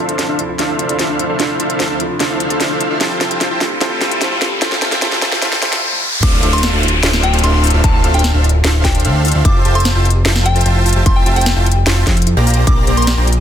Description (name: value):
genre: future bass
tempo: 149 BPM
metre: 4/4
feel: half-time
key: unclear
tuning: A4 = 444 Hz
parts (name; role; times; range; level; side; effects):
- clear grand piano; accompaniment; 0.0-6.0 s; F3 to A4; -24 LUFS; right 2 dB; sidechain pumping, tape echo
- shimmering ambient pad; sustained chords; 0.0-5.8 s; D2 to G4; -30 LUFS; equal; chorus, built-in reverb, sidechain pumping
- thumb-piano-like synth pluck; arpeggios; 0.0-13.4 s; D4 to F5; -27 LUFS; right 3 dB; chorus, vintage 12-bit sampler grit, sidechain pumping, tape echo
- dense compressed supersaw; riff; 0.0-13.3 s; Bb3 to C6; -19 LUFS; right 1 dB; sidechain pumping, low-pass filter
- riser and downlifter; sound effects; 2.0-9.4 s; none; -22 LUFS; left 1 dB; none
- trap drum kit; drums; 0.1-13.4 s; crash cymbal, hi-hat, snare drum, toms; -19 LUFS; left 1 dB; soft clipping on snare
- soft synth bell; melody; 6.2-13.1 s; G5 to D6; -22 LUFS; left 1 dB; chorus, sidechain pumping, ping-pong delay
- fat analog bass; bass; 6.2-13.4 s; D1 to F2; -14 LUFS; equal; sidechain pumping
- electronic kick drum; drums; 6.2-12.8 s; none; -14 LUFS; equal; none
room: light reverb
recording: dense, heavily limited modern master, high-pass filter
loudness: -12 LUFS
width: side -9 dB against mid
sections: 0.0-6.2 A section; 6.2-13.4 B section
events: build-up 0.0-6.2; drum fill 0.0-5.8, 5.9-6.2; filter sweep on supersaw synth 0.0-6.2; filter sweep 0.0-6.2; riser 2.0-6.2; drop 6.2-13.4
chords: 0.0 Dm9; 3.0 Fmaj9; 6.0 N.C.; 6.2 Dm9; 9.4 Fmaj9; 12.5 Bb6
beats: 0.19 0.59 0.99 | 1.40 1.80 2.20 2.60 | 3.01 3.41 3.81 4.21 | 4.62 5.02 5.42 5.83 | 6.23 6.63 7.03 7.44 | 7.84 8.24 8.64 9.05 | 9.45 9.85 10.26 10.66 | 11.06 11.46 11.87 12.27 | 12.67 13.07